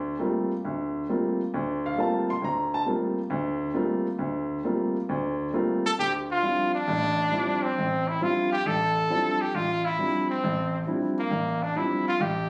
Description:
jazz; 135 BPM; 4/4; swing 68% on 8ths; D minor; A4 = 440 Hz
warm grand piano; accompaniment; 0.0-12.5 s; A1 to C6; -29 LUFS; equal
clear trumpet; melody; 5.9-12.5 s; Bb3 to A4; -28 LUFS; equal
moderate studio reverb, RT60 0.9 s; recorded on a phone in the room, club reverb, compression; -27 LUFS; mono
0.0-6.0 A section; 6.0-12.5 B section
0.0 Gm11; 6.0 Dm11
0.20 | 0.64 1.08 1.53 1.97 | 2.42 2.86 3.31 3.75 | 4.19 4.64 5.08 5.53 | 5.97 6.42 6.86 7.31 | 7.75 8.20 8.64 9.09 | 9.53 9.98 10.42 10.87 | 11.31 11.76 12.20

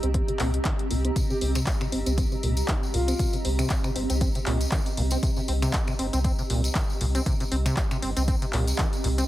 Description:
acid house; 118 BPM; 4/4; swing 56% on 16ths; C minor; A4 = 442 Hz
acid bass, saw; riff; 0.0-9.2 s; Bb2 to C4; -31 LUFS; equal; overdrive, lush chorus, cassette tape, sidechain pumping
warm sub bass; bass; 0.0-9.2 s; G1 to C2; -26 LUFS; equal; sidechain pumping
punchy analog drum machine; drums; 0.0-9.3 s; finger snaps, handclaps, hi-hat; -32 LUFS; left 1 dB
granular cloud pad; texture; 0.0-9.3 s; C4 to Bb5; -32 LUFS; right 2 dB; built-in reverb, sidechain pumping
electronic kick drum; drums; 0.1-8.9 s; -27 LUFS; equal
tambourine; percussion; 1.2-9.3 s; -36 LUFS; left 1 dB
breathy flute-like synth lead; melody; 1.3-3.3 s; F4 to G4; -34 LUFS; left 2 dB; chorus, dub echo
light reverb, digital ambience; heavily compressed radio sound; -23 LUFS; side -14 dB against mid
0.0-9.3 A section
filter sweep on acid bass 0.0-9.3
0.0 Cm7
0.14 0.65 | 1.16 1.67 2.18 2.69 | 3.19 3.70 4.21 4.72 | 5.23 5.74 6.25 6.75 | 7.26 7.77 8.28 8.79

